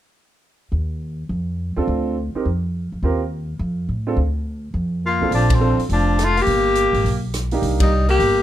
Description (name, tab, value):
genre	jazz, small-group swing and bop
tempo	209 BPM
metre	4/4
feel	swing 62% on 8ths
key	Bb major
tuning	A4 = 440 Hz
part	upright bass	bass	0.7-8.4 s	F1 to A2	-21 LUFS	equal	none
part	warm upright piano	accompaniment	1.8-7.9 s	Bb2 to Bb4	-23 LUFS	right 4 dB	none
part	clear tenor saxophone	melody	5.1-8.4 s	C4 to G4	-18 LUFS	left 2 dB	none
part	breathy alto saxophone	second line	5.1-8.4 s	F3 to Bb3	-25 LUFS	right 2 dB	none
part	swinging big-band drum kit	drums	5.3-8.3 s	hi-hat, kick drum, ride cymbal, rim click	-25 LUFS	equal	none
room	light reverb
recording	dark, warm production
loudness	-18 LUFS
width	side -12 dB against mid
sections	0.7-5.3 A section; 5.3-8.4 B section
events	band accent 5.5, 7.8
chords	0.7 N.C.; 1.3 F5; 1.9 Dm7; 2.5 N.C.; 3.0 Eb6; 3.6 F5; 4.2 N.C.; 4.7 Fsus4; 5.3 Bbmaj9; 6.5 G; 7.6 Cm9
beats	| 0.73 1.02 1.30 1.59 | 1.88 2.16 2.45 2.74 | 3.02 3.31 3.60 3.89 | 4.17 4.46 4.75 5.04 | 5.33 5.61 5.90 6.19 | 6.47 6.76 7.05 7.34 | 7.62 7.91 8.20